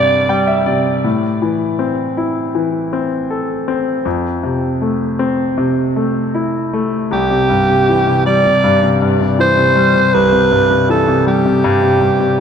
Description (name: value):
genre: pop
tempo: 80 BPM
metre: 4/4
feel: straight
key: C major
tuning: A4 = 438 Hz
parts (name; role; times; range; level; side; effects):
- raspy alto saxophone; melody; 0.0-0.7, 7.1-12.4 s; G4 to D5; -14 LUFS; right 2 dB; ping-pong delay
- clear concert grand piano; accompaniment; 0.0-12.4 s; C2 to G5; -14 LUFS; left 2 dB; none
room: wet lush hall reverb, RT60 2.3 s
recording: dreamy mix soaked in reverb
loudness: -12 LUFS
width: side -7 dB against mid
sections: 0.0-7.1 A section; 7.1-12.4 B section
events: grand piano fill 0.0-1.1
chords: 0.0 Cadd9; 1.1 Am; 4.1 Fmaj7; 7.1 C